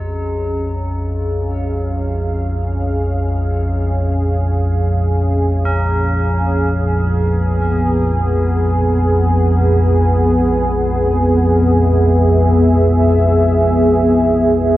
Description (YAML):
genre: dark ambient drone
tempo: free time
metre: none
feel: none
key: unclear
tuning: A4 = 440 Hz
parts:
  - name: dark analog pad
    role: sustained chords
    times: 0.0-14.8 s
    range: B3 to F5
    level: -16 LUFS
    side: equal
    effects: chorus
  - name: tubular bells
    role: arpeggios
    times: 0.0-13.5 s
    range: Eb4 to Bb4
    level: -30 LUFS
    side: right 1 dB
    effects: diffuse ambient delay
  - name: deep rumbling drone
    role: drone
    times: 0.0-14.8 s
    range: Bb1 to F2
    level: -16 LUFS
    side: equal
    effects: built-in reverb
  - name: bronze singing bowl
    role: texture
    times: 0.0-14.8 s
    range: Ab4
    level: -32 LUFS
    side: left 3 dB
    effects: none
room: wet huge ambient reverb, RT60 7.5 s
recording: worn, warbling old tape, cassette tape, warbly pitch drift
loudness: -13 LUFS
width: side -15 dB against mid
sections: 0.0-14.8 A section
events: fade-in on analog synth pad 0.0-14.8; fade-in on tubular bells 0.0-14.8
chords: 0.0 Db; 6.8 E